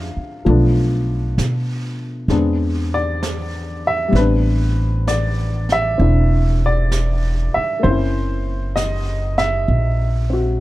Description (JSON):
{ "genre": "jazz ballad", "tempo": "65 BPM", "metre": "4/4", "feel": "swing 69% on 8ths", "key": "unclear", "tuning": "A4 = 440 Hz", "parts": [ { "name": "warm upright piano", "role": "accompaniment", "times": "0.0-10.6 s", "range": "E3 to F5", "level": "-20 LUFS", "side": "left 1 dB", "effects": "none" }, { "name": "upright bass", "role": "bass", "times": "0.0-10.6 s", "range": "E1 to B2", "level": "-18 LUFS", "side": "equal", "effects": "none" }, { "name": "jazz brush drum kit", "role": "drums", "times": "0.5-10.6 s", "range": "brushed snare drum, hi-hat, snare drum", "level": "-32 LUFS", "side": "right 3 dB", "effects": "none" } ], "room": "little or no reverb", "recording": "dark, warm production", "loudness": "-16 LUFS", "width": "side -16 dB against mid", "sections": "0.0-10.6 A section", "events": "none", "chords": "0.5 Bm7b5; 2.3 E7b13; 4.1 Am11; 7.8 F#7#11" }